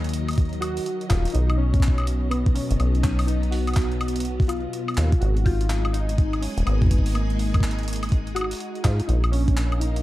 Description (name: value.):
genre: IDM.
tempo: 124 BPM.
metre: 4/4.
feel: swing 62% on 16ths.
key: unclear.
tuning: A4 = 442 Hz.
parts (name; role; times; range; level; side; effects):
warbly lo-fi synth keys; melody; 0.0-10.0 s; Bb3 to Gb4; -30 LUFS; left 1 dB; chorus, vintage 12-bit sampler grit, dub echo.
soft string machine; sustained chords; 0.0-10.0 s; B2 to Ab5; -32 LUFS; equal; ensemble chorus, vintage 12-bit sampler grit.
deep acid bass; bass; 0.0-10.0 s; Eb1 to Ab2; -23 LUFS; equal; none.
jungle sampler-style drum kit; drums; 0.0-10.0 s; handclaps, hi-hat, woodblock; -33 LUFS; left 1 dB; none.
electronic kick drum; drums; 0.4-9.6 s; none; -20 LUFS; equal; none.
room: little or no reverb.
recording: dark, warm production.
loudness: -20 LUFS.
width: side -16 dB against mid.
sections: 0.0-10.0 A section.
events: none.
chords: 0.0 Ebm; 1.3 B; 5.2 Abm7; 9.1 Bbsus4.